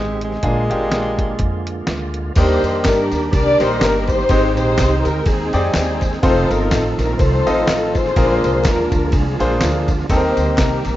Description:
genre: uptempo gospel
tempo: 124 BPM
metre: 4/4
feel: swing 56% on 8ths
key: Eb major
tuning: A4 = 441 Hz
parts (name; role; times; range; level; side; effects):
- breathy tenor saxophone; melody; 0.0-1.9 s; Ab3; -24 LUFS; equal; tape echo
- bright tonewheel organ; sustained chords; 0.0-11.0 s; D3 to G5; -26 LUFS; right 4 dB; slow rotary speaker, overdrive, chorus vibrato
- upright bass; bass; 0.0-11.0 s; F1 to G2; -21 LUFS; equal; none
- lo-fi sampler-style drum kit; drums; 0.2-10.9 s; crash cymbal, hi-hat, kick drum, ride cymbal, snare drum; -21 LUFS; equal; none
- bright grand piano; accompaniment; 0.4-10.8 s; Ab2 to Eb5; -20 LUFS; left 1 dB; none
- dark studio string section; melody; 2.4-11.0 s; C4 to D5; -19 LUFS; left 2 dB; none
- tambourine and handclaps; percussion; 2.4-11.0 s; none; -33 LUFS; left 4 dB; none
room: light reverb, small room ambience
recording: rough home demo mix, nothing above 7.7 kHz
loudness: -14 LUFS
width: side -14 dB against mid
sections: 0.0-2.4 A section; 2.4-11.0 B section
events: none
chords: 0.4 Bb7; 2.4 Ebmaj7; 4.3 Abmaj7; 6.2 F7; 8.2 Bb7; 10.1 Eb6

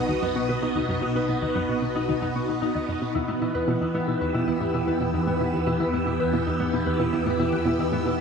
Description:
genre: ambient, sequencer-driven space music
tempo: 113 BPM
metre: 4/4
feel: straight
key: E harmonic minor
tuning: A4 = 441 Hz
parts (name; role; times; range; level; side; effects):
- phased string machine; sustained chords; 0.0-8.2 s; B2 to E6; -26 LUFS; right 2 dB; ensemble chorus, phaser
- concert harp; arpeggios; 0.0-8.2 s; B3 to D#5; -27 LUFS; left 3 dB; auto-pan, ping-pong delay
- analog drone; bass; 0.0-8.2 s; B1 to E2; -35 LUFS; right 1 dB; chorus
- analog pluck; riff; 0.1-8.1 s; D#2 to B2; -30 LUFS; right 1 dB; chorus, ping-pong delay
room: wet huge ambient reverb, RT60 8.8 s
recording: none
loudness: -22 LUFS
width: side -6 dB against mid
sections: 0.0-8.2 A section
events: filter sweep on synth arpeggio sound 0.0-8.2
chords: 0.0 B; 3.1 Em

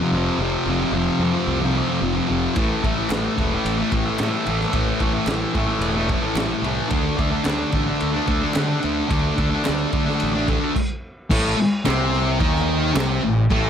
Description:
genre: garage rock duo or trio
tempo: 110 BPM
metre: 4/4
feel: straight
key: A minor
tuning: A4 = 440 Hz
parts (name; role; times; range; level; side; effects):
- thick fuzz guitar; riff; 0.0-13.7 s; F2 to D#4; -20 LUFS; left 1 dB; distortion
- growling fingered electric bass; bass; 0.1-13.7 s; E1 to D3; -26 LUFS; right 1 dB; overdrive
- crunchy breakbeat drum kit; drums; 2.6-13.6 s; crash cymbal, kick drum, ride cymbal, snare drum; -25 LUFS; right 1 dB; none
- group handclap; percussion; 3.1-13.1 s; none; -35 LUFS; right 4 dB; none
room: light reverb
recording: none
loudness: -18 LUFS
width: side -8 dB against mid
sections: 0.0-11.3 A section; 11.3-13.7 B section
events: stop 10.8-11.3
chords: 0.0 F5; 2.6 A5; 6.9 D5; 11.3 Am

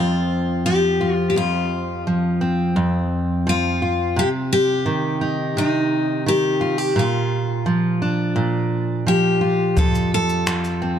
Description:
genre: acoustic pop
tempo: 86 BPM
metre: 4/4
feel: straight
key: F mixolydian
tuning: A4 = 440 Hz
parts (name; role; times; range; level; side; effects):
- picked steel-string acoustic guitar; melody; 0.0-11.0 s; Eb4 to A4; -21 LUFS; left 2 dB; none
- picked steel-string acoustic guitar; accompaniment; 0.0-11.0 s; F2 to G4; -20 LUFS; right 1 dB; none
- jazz brush drum kit; drums; 9.8-10.8 s; finger snaps, kick drum, shaker; -22 LUFS; equal; none
room: light reverb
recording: dark, warm production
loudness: -18 LUFS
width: side -9 dB against mid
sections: 0.0-11.0 A section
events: none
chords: 0.0 F5; 4.2 Cm; 7.0 Bb; 9.8 F

